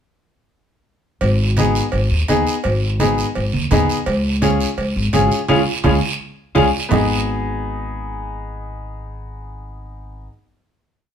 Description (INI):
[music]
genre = latin, cumbia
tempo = 169 BPM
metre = 4/4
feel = straight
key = G# dorian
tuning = A4 = 440 Hz
[part]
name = upright bass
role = bass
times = 1.2-10.3 s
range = G#1 to D#2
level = -21 LUFS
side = equal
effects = none
[part]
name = cowbell and timbales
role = percussion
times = 1.2-7.0 s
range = none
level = -25 LUFS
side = right 4 dB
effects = none
[part]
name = guiro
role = percussion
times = 1.2-7.0 s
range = none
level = -28 LUFS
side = right 5 dB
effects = none
[part]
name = clear upright piano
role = accompaniment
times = 1.6-10.3 s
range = B3 to G#4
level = -19 LUFS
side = left 2 dB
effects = none
[part]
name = congas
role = percussion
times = 1.6-7.0 s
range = none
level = -22 LUFS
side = right 3 dB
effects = none
[sound]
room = moderate studio reverb, RT60 0.8 s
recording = band playing live in one room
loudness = -16 LUFS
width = side -8 dB against mid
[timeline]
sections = 1.2-6.9 groove; 6.9-9.8 final chord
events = drum fill 5.5-6.9; band accent 5.5-6.9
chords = 1.2 G#m; 4.1 C#; 6.9 G#m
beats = | 1.22 1.57 1.93 2.28 | 2.64 3.00 3.35 3.71 | 4.06 4.42 4.77 5.13 | 5.49 5.84 6.20 6.55 | 6.91 7.26 7.62 7.97 | 8.33 8.69 9.04 9.40